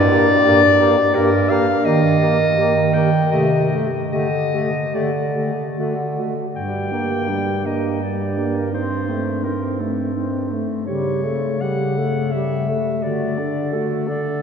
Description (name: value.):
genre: classical, lyrical piece for single-reed quartet.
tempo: 72-87 BPM.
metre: 3/4.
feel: rubato.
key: G minor.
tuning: A4 = 440 Hz.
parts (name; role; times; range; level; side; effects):
clear clarinet; melody; 0.0-14.4 s; A4 to G5; -21 LUFS; left 2 dB; none.
warm bass clarinet; bass; 0.0-14.4 s; G2 to Eb3; -21 LUFS; right 2 dB; none.
mellow alto saxophone; second line; 0.1-14.4 s; C4 to A4; -26 LUFS; right 2 dB; none.
mellow tenor saxophone; accompaniment; 0.1-14.4 s; G3 to D4; -24 LUFS; left 1 dB; none.
room: wet cathedral reverb, RT60 6.0 s.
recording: heard from further back in the room, nothing above 7.8 kHz.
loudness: -17 LUFS.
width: side -7 dB against mid.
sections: 0.0-6.6 A section; 6.6-14.4 B section.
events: none.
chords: 0.0 Gm; 1.9 Eb; 3.3 Am7b5/C; 4.1 Dsus4; 6.6 Gm; 8.7 Adim/G; 10.9 A7/C#; 13.0 D.